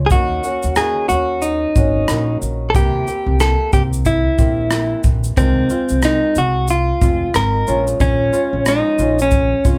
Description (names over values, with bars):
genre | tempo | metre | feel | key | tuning
acoustic pop | 91 BPM | 4/4 | swing 60% on 16ths | Bb minor | A4 = 436 Hz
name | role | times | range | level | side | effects
flamenco guitar | accompaniment | 0.0-9.8 s | Bb2 to G4 | -26 LUFS | equal | none
upright bass | bass | 0.0-9.8 s | F1 to Eb2 | -22 LUFS | equal | none
direct-recorded clean electric guitar | melody | 0.1-9.8 s | C4 to Bb4 | -20 LUFS | equal | none
natural country drum kit | drums | 0.1-9.8 s | kick drum, rim click, shaker | -21 LUFS | equal | none
room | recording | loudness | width
moderate studio ambience, RT60 0.4 s | band playing live in one room | -16 LUFS | mono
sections
0.0-9.8 A section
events
none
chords
0.1 Ebm7; 2.7 C7; 5.4 Fm7/C; 7.7 Bbm7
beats
| 0.11 0.77 1.42 2.08 | 2.74 3.40 4.06 4.72 | 5.37 6.03 6.69 7.35 | 8.01 8.66 9.32